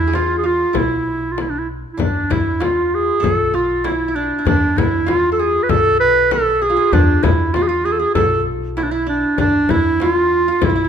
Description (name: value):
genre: Turkish makam ensemble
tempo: 97 BPM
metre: 4/4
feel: straight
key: E makam hicaz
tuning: A4 = 439 Hz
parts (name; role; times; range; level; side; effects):
- clear clarinet; melody; 0.0-10.9 s; D4 to B4; -16 LUFS; right 2 dB; none
- qanun; second line; 0.0-10.9 s; D4 to A4; -22 LUFS; left 2 dB; none
- upright bass; bass; 0.0-10.9 s; B1 to E2; -24 LUFS; equal; none
- frame drum; percussion; 0.1-10.8 s; none; -22 LUFS; left 6 dB; none
- darbuka; percussion; 2.0-10.8 s; none; -25 LUFS; left 2 dB; none
room: moderate recital hall reverb, RT60 1.4 s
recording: minimal, uncompressed stereo recording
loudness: -14 LUFS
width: side -8 dB against mid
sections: 0.0-10.9 A section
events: none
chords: none